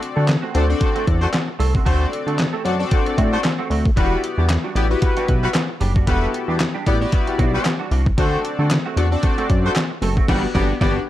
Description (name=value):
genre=early-eighties boogie funk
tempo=114 BPM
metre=4/4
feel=swing 56% on 16ths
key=unclear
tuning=A4 = 439 Hz
part: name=chorused polysynth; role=accompaniment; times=0.0-11.0 s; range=B3 to D5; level=-24 LUFS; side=left 3 dB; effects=none
part: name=semi-hollow electric guitar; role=riff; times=0.0-11.0 s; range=G3 to D5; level=-29 LUFS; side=right 6 dB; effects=ensemble chorus
part: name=detuned 8-bit digital drum machine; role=drums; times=0.0-11.0 s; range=crash cymbal, handclaps, hi-hat, kick drum, snare drum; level=-20 LUFS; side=equal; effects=overdrive
part: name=warm horn section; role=second line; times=0.2-11.0 s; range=G3 to D5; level=-26 LUFS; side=left 1 dB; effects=none
part: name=chorused synth bass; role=bass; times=0.2-11.0 s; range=E1 to D3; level=-19 LUFS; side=equal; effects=none
part: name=group handclap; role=percussion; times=4.5-9.9 s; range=none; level=-32 LUFS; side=left 2 dB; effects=none
room=digital ambience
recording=dark, warm production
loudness=-16 LUFS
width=side -13 dB against mid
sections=0.0-11.1 A section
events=band accent 10.3-11.1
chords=0.0 D7; 4.0 Em9; 8.2 D7; 10.3 Gmaj7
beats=0.28 0.81 1.34 | 1.86 2.39 2.92 3.44 | 3.97 4.50 5.02 5.55 | 6.08 6.60 7.13 7.65 | 8.18 8.71 9.23 9.76 | 10.29 10.81